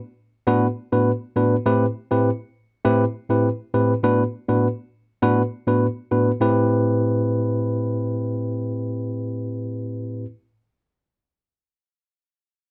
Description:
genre	afrobeats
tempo	101 BPM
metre	4/4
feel	straight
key	A dorian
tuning	A4 = 440 Hz
part	tine electric piano	solo	0.5-10.2 s	A2 to B4	-21 LUFS	equal	none
room	moderate small room reverb, RT60 0.5 s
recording	none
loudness	-22 LUFS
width	mono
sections	0.0-6.4 A section; 6.4-8.8 B section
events	none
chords	0.0 Bm/A; 1.7 Am7; 4.0 Bm/A; 6.4 Am7

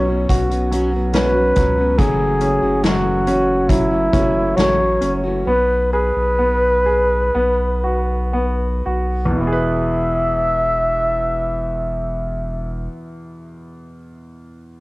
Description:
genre	pop ballad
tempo	56-71 BPM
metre	4/4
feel	straight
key	E major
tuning	A4 = 440 Hz
part	breathy flugelhorn	melody	0.0-12.9 s	E4 to E5	-18 LUFS	equal	cassette tape
part	bright concert grand piano	accompaniment	0.0-14.8 s	E2 to B4	-22 LUFS	equal	none
part	mellow French horn section	sustained chords	0.0-2.0 s	B3 to F#4	-29 LUFS	equal	none
part	fingerpicked plugged-in steel-string acoustic guitar	arpeggios	0.0-5.5 s	F#2 to F#4	-24 LUFS	left 2 dB	analog delay
part	saturated sub bass	bass	0.0-12.9 s	E1 to C#2	-23 LUFS	equal	none
part	soft-mallet drum kit	drums	0.3-5.2 s	hi-hat, kick drum, snare drum	-20 LUFS	equal	cassette tape
room	light reverb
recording	home recording on cassette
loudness	-15 LUFS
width	side -21 dB against mid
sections	0.0-9.4 A section; 9.4-13.7 B section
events	slowing down 2.0-9.4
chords	0.0 Bsus2; 2.0 F#m7; 5.5 G#m/B; 7.3 B5; 9.4 E

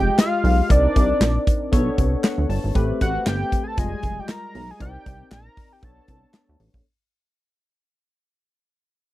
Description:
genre	early-eighties boogie funk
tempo	117 BPM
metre	4/4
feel	swing 56% on 16ths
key	unclear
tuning	A4 = 440 Hz
part	fat analog lead	melody	0.0-6.6 s	D5 to Bb5	-24 LUFS	equal	chorus, slapback echo
part	barky tine electric piano	accompaniment	0.0-6.8 s	G3 to A5	-27 LUFS	left 2 dB	overdrive, analog chorus
part	chorused synth bass	bass	0.0-6.8 s	F1 to D2	-22 LUFS	equal	none
part	modern studio drum kit	drums	0.2-6.8 s	handclaps, hi-hat, kick drum, snare drum	-20 LUFS	equal	none
room	little or no reverb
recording	dry, close 1970s-style studio recording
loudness	-18 LUFS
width	side -16 dB against mid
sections	0.0-6.9 A section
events	fade-out 0.0-6.9; tine electric piano fill 2.0-2.8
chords	0.0 Fm9; 0.7 Cm9; 1.7 Bm9; 2.8 Am9; 3.8 Fm9; 4.8 Cm9; 5.8 Bm9

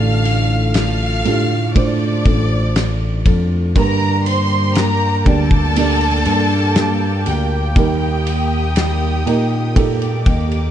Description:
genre	pop ballad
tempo	60 BPM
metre	4/4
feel	straight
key	D phrygian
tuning	A4 = 440 Hz
part	warm studio violin section	melody	0.0-10.7 s	G4 to F6	-22 LUFS	equal	none
part	felt-muted upright piano	accompaniment	0.0-10.7 s	G2 to D5	-22 LUFS	right 6 dB	none
part	picked steel-string acoustic guitar	arpeggios	0.0-10.7 s	G2 to A4	-27 LUFS	left 6 dB	digital delay
part	bell-like tine electric piano	bass	0.0-10.7 s	A1 to Bb2	-18 LUFS	equal	phaser
part	loose indie drum kit	drums	0.3-10.7 s	kick drum, ride cymbal, snare drum	-20 LUFS	equal	none
part	sweeping resonant pad	sustained chords	3.8-10.7 s	Bb3 to Eb6	-26 LUFS	right 2 dB	chorus
room	small room reverb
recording	dark, warm production, nothing above 10.3 kHz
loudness	-14 LUFS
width	side -10 dB against mid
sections	0.0-10.7 A section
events	none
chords	0.0 Dm/A; 3.8 Gm; 7.8 Eb

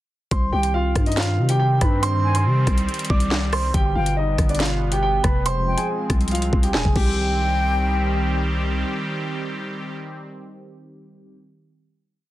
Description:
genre	hip hop, drill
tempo	140 BPM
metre	4/4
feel	half-time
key	C harmonic minor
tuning	A4 = 440 Hz
part	warm concert grand piano	melody	0.3-8.4 s	D4 to D6	-25 LUFS	right 2 dB	ping-pong delay
part	sweeping resonant pad	sustained chords	0.3-11.4 s	B2 to G4	-28 LUFS	right 1 dB	chorus
part	growling 808-style bass	bass	0.3-8.8 s	Eb1 to C3	-22 LUFS	equal	none
part	drill drum kit	drums	0.3-7.1 s	crash cymbal, handclaps, hi-hat, kick drum, rim click, snare drum	-22 LUFS	equal	none
part	silver concert flute	second line	0.5-8.4 s	G5 to Ab5	-28 LUFS	left 2 dB	ping-pong delay
room	digital ambience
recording	dense, heavily limited modern master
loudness	-18 LUFS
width	side -15 dB against mid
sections	0.3-7.2 hook; 7.2-10.6 final hit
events	none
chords	0.3 Cm; 3.7 G; 5.5 Fmadd9; 7.0 Cm

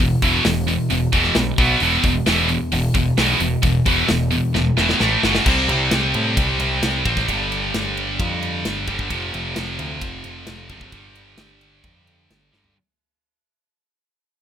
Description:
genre	heavy metal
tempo	132 BPM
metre	4/4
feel	straight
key	E phrygian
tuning	A4 = 441 Hz
part	scooped high-gain guitar	riff	0.0-12.8 s	E2 to C4	-19 LUFS	right 1 dB	distortion
part	growling picked electric bass	bass	0.0-12.7 s	E1 to A2	-24 LUFS	equal	overdrive
part	tight metal drum kit	drums	0.0-12.7 s	crash cymbal, hi-hat, kick drum, ride cymbal, snare drum, toms	-24 LUFS	left 1 dB	none
room	little or no reverb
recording	rough home demo mix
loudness	-16 LUFS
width	side -9 dB against mid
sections	0.0-5.5 A section; 5.5-12.8 B section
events	drum fill 4.5-5.5, 12.5; fade-out 5.5-12.8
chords	0.0 E5; 1.6 B5; 1.8 E5; 5.0 A5; 5.2 F#5; 5.5 C5; 7.3 G5; 9.1 F5; 10.9 G5

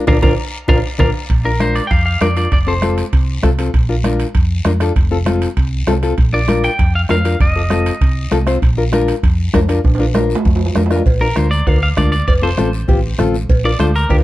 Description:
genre	latin, cumbia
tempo	197 BPM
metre	4/4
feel	straight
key	Bb major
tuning	A4 = 440 Hz
part	nylon-string guitar	accompaniment	0.0-14.2 s	C4 to C5	-18 LUFS	left 3 dB	none
part	clean electric guitar	melody	0.1-3.0, 6.3-8.4, 11.2-14.2 s	G4 to Bb5	-20 LUFS	equal	spring reverb, slapback echo, plate reverb
part	hollow-body short-scale fingered electric bass	bass	0.1-14.2 s	F1 to F2	-17 LUFS	equal	none
part	bombo	percussion	0.1-14.2 s	none	-16 LUFS	right 1 dB	none
part	congas	percussion	0.1-14.2 s	none	-23 LUFS	left 1 dB	none
part	guiro	percussion	0.1-14.2 s	none	-34 LUFS	left 5 dB	none
part	timbales and cowbell	percussion	0.1-14.2 s	none	-26 LUFS	right 3 dB	none
room	light reverb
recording	dark, warm production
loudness	-12 LUFS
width	side -16 dB against mid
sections	0.0-1.3 A section; 1.3-11.1 B section; 11.1-14.2 C section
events	band accent 0.1-1.3; drum fill 0.5-1.3, 9.8-11.1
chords	0.0 Bb; 2.5 F; 3.7 Bb; 5.0 F; 6.2 Bb; 7.4 F7; 8.6 Bb; 12.3 F; 13.5 Bb

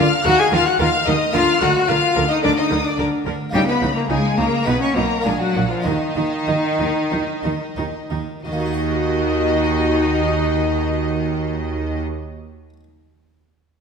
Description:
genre	classical, baroque-style concerto movement with solo episodes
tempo	86-110 BPM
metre	4/4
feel	straight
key	Eb minor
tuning	A4 = 440 Hz
part	rich studio violin section	melody	0.0-12.0 s	Eb5 to Ab6	-26 LUFS	left 4 dB	none
part	warm cello	melody	0.0-12.0 s	Eb3 to Ab4	-21 LUFS	left 2 dB	none
part	rich chamber violin section	second line	0.0-12.0 s	Eb4 to Ab5	-25 LUFS	left 2 dB	none
part	harpsichord	accompaniment	0.0-12.8 s	Bb2 to Eb5	-28 LUFS	right 1 dB	none
part	rich symphonic viola section	accompaniment	0.0-12.0 s	D4 to Bb4	-26 LUFS	right 1 dB	none
part	rich studio cello section	bass	0.0-12.0 s	Bb2 to Eb3	-26 LUFS	right 4 dB	none
part	warm chamber double bass section	bass	0.0-12.0 s	Bb1 to Eb2	-26 LUFS	right 5 dB	none
room	wet scoring stage reverb, RT60 1.5 s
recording	none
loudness	-17 LUFS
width	side -6 dB against mid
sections	0.0-8.5 A section; 8.5-11.2 B section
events	slowing down 2.4-8.5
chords	0.3 Eb5; 1.3 Bb/D; 3.5 Eb5/Db; 4.7 Abm/Cb; 5.3 Bb; 5.9 Ebm

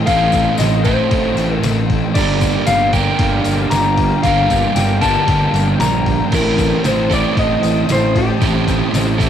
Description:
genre	rock, shoegaze and dream pop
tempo	115 BPM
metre	4/4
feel	straight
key	unclear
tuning	A4 = 440 Hz
part	electric guitar at the edge of break-up	melody	0.0-9.3 s	G4 to Bb5	-18 LUFS	left 2 dB	cassette tape, tape echo
part	string machine, cellos	sustained chords	0.0-9.3 s	A4 to Eb6	-27 LUFS	left 2 dB	ensemble chorus
part	overdriven semi-hollow guitar	riff	0.0-9.3 s	G2 to Bb4	-18 LUFS	right 8 dB	reverse reverb
part	thick fuzz guitar	riff	0.0-9.3 s	G2 to A3	-22 LUFS	left 10 dB	distortion, analog chorus
part	fuzz fingered electric bass	bass	0.1-9.3 s	G1 to Bb1	-20 LUFS	left 1 dB	overdrive, transformer saturation
part	detuned 8-bit digital drum machine	drums	0.1-9.3 s	crash cymbal, hi-hat, kick drum, snare drum	-21 LUFS	left 1 dB	overdrive, cassette tape
part	tambourine	percussion	0.1-9.3 s	none	-33 LUFS	left 12 dB	none
room	light reverb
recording	home recording on cassette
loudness	-13 LUFS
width	side -9 dB against mid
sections	0.0-9.3 A section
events	none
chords	0.0 Am7b5; 2.2 Gm7; 6.3 Am7b5

